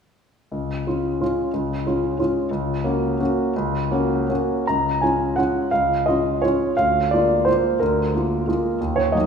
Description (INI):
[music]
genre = classical, piano waltz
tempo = 146-190 BPM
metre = 3/4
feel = rubato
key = Db major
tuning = A4 = 440 Hz
[part]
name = warm concert grand piano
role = solo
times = 0.5-9.3 s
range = Db2 to Bb5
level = -19 LUFS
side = equal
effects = none
[sound]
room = wet scoring stage reverb, RT60 1.6 s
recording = recorded in a church or concert hall, small room ambience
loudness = -19 LUFS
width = side -6 dB against mid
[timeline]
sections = 0.5-4.7 A section; 4.7-9.3 B section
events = none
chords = 0.5 Db; 2.5 Gb/Db; 4.7 Db; 6.8 Bb7/D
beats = | 0.52 0.87 1.21 | 1.54 1.86 2.19 | 2.52 2.85 3.20 | 3.56 3.92 4.30 | 4.69 5.03 5.38 | 5.73 6.08 6.43 | 6.78 7.12 7.47 | 7.81 8.14 8.48 | 8.81 9.15